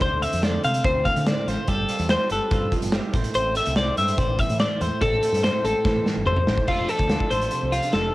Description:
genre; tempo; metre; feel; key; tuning
math rock and midwest emo; 144 BPM; 4/4; straight; A minor; A4 = 440 Hz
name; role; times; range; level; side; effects
twelve-string electric guitar; accompaniment; 0.0-8.1 s; A2 to C5; -30 LUFS; right 4 dB; lush chorus, cassette tape
twelve-string electric guitar; arpeggios; 0.0-8.1 s; F4 to F5; -23 LUFS; left 2 dB; cassette tape, analog delay
growling fingered electric bass; bass; 0.0-8.1 s; F1 to D3; -27 LUFS; equal; overdrive
loose indie drum kit; drums; 0.0-8.0 s; crash cymbal, hi-hat, kick drum, snare drum, toms; -25 LUFS; equal; cassette tape
room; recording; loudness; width
small room ambience; home recording on cassette; -20 LUFS; side -18 dB against mid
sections
0.0-6.7 A section; 6.7-8.1 B section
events
drum fill 5.9-6.7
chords
0.0 Dm9; 1.7 G7sus4; 3.1 Am7; 6.7 F6

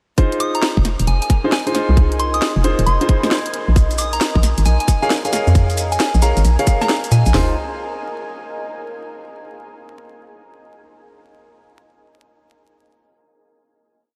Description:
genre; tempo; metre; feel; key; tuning
UK garage, two-step garage; 134 BPM; 4/4; swing 65% on 16ths; F minor; A4 = 440 Hz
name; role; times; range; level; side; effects
warm grand piano; stabs; 0.2-7.5 s; Eb4 to F5; -25 LUFS; equal; tape echo
garage drum kit; drums; 0.2-7.5 s; hi-hat, kick drum, snare drum, toms; -18 LUFS; equal; none
garage drum kit; drums; 0.2-7.3 s; hi-hat, snare drum; -26 LUFS; equal; none
deep dark ambient pad; texture; 1.2-9.1 s; Bb4 to Ab5; -32 LUFS; equal; chorus, built-in reverb, sidechain pumping
soft synth bell; melody; 0.4-7.3 s; Ab5 to Eb6; -26 LUFS; equal; chorus, phaser, tape echo
hollow knocking FM bass; bass; 0.8-7.5 s; Eb1 to Bb2; -18 LUFS; equal; none
maracas; percussion; 3.8-7.3 s; none; -32 LUFS; equal; none
room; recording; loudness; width
light reverb; vinyl crackle; -17 LUFS; mono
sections
0.2-7.3 drop; 7.3-9.1 final chord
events
drop 0.2-7.3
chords
0.2 Fm7; 3.5 Bbm7; 7.3 Fm7

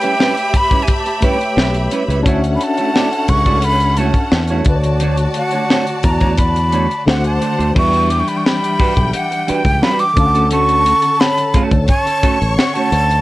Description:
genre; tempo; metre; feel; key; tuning
lush 1970s-style soul; 87 BPM; 4/4; straight; unclear; A4 = 440 Hz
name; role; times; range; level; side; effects
breathy jazz flute; melody; 0.0-13.2 s; F#5 to D6; -17 LUFS; right 1 dB; none
rich studio string section; second line; 0.0-13.2 s; G3 to C#6; -23 LUFS; left 1 dB; none
barky tine electric piano; accompaniment; 0.0-13.2 s; D3 to F#5; -22 LUFS; left 2 dB; overdrive, fast tremolo
clean electric guitar; riff; 0.0-13.1 s; G3 to D5; -21 LUFS; right 4 dB; none
tight funk drum kit; drums; 0.0-13.2 s; crash cymbal, hi-hat, kick drum, snare drum; -16 LUFS; equal; vintage 12-bit sampler grit
fingered electric bass; bass; 1.6-13.2 s; A1 to E2; -17 LUFS; equal; none
vibraphone with soft mallets; texture; 8.1-13.2 s; C#5 to F#5; -27 LUFS; equal; none
room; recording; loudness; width
light reverb; cassette tape; -12 LUFS; side -17 dB against mid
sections
0.0-7.8 A section; 7.8-13.2 B section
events
none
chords
0.0 A9; 2.3 Dmaj9; 4.7 Bm9/D; 7.1 D7; 7.8 Em9; 10.2 Dmaj7

